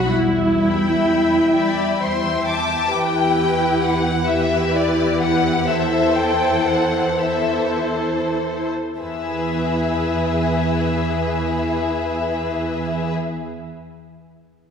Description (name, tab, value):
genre	classical, slow romantic movement for string orchestra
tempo	30-45 BPM (dotted quarters)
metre	6/8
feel	rubato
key	E minor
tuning	A4 = 440 Hz
part	rich studio violin section	melody	0.0-13.1 s	C5 to D6	-23 LUFS	left 4 dB	none
part	rich studio violin section	second line	0.0-13.1 s	G4 to G5	-23 LUFS	left 1 dB	none
part	rich studio viola section	accompaniment	0.0-13.1 s	E3 to F#4	-22 LUFS	equal	none
part	warm studio cello section	bass	0.0-13.1 s	E2 to G3	-25 LUFS	right 2 dB	none
part	warm studio double bass section	bass	0.1-2.8 s	E2	-27 LUFS	equal	none
room	wet concert hall reverb, RT60 2.2 s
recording	heard from further back in the room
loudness	-17 LUFS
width	side -7 dB against mid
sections	0.0-2.9 A section; 2.9-9.0 B section; 9.0-12.4 C section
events	slowing down 1.5-9.0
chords	0.1 Em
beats	| 0.13 1.54 | 2.92 4.28 | 5.69 7.18 | 9.00 10.69